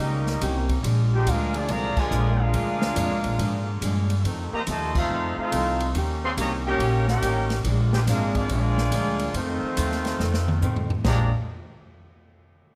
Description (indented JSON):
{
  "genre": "jazz, big band swing",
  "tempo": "141 BPM",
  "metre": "4/4",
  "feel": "swing 65% on 8ths",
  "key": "Bb major",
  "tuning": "A4 = 436 Hz",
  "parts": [
    { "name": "mellow trumpet section", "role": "melody", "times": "0.0-11.3 s", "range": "A3 to C6", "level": "-31 LUFS", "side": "equal", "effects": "none" },
    { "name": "brilliant trombone section", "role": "second line", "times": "0.0-11.3 s", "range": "Bb2 to G4", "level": "-33 LUFS", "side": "equal", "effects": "none" },
    { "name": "archtop guitar, miked and amplified", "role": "accompaniment", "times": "0.0-11.3 s", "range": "F2 to G4", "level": "-34 LUFS", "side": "equal", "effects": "none" },
    { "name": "muted trombone section", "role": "sustained chords", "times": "0.0-11.3 s", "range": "C3 to Ab4", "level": "-40 LUFS", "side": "equal", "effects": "none" },
    { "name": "upright bass", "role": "bass", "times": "0.0-11.3 s", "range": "Ab1 to A2", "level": "-27 LUFS", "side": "equal", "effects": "none" },
    { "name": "swinging big-band drum kit", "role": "drums", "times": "0.3-11.2 s", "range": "crash cymbal, hi-hat, kick drum, ride cymbal, snare drum, toms", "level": "-34 LUFS", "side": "equal", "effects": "none" }
  ],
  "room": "light reverb",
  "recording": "none",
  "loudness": "-24 LUFS",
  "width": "mono",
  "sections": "0.0-11.0 A section; 11.0-12.7 B section",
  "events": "band accent 1.9, 4.9; drum fill 10.2-11.0",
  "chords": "0.0 Eb7; 0.8 Bb7; 4.2 F7; 5.9 Eb7; 7.6 Bb7; 9.3 F7; 11.0 Bb13",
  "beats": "0.41 | 0.84 1.26 1.69 2.12 | 2.54 2.97 3.39 3.82 | 4.25 4.67 5.10 5.52 | 5.95 6.37 6.80 7.22 | 7.65 8.07 8.50 8.92 | 9.35 9.77 10.20 10.62 | 11.05"
}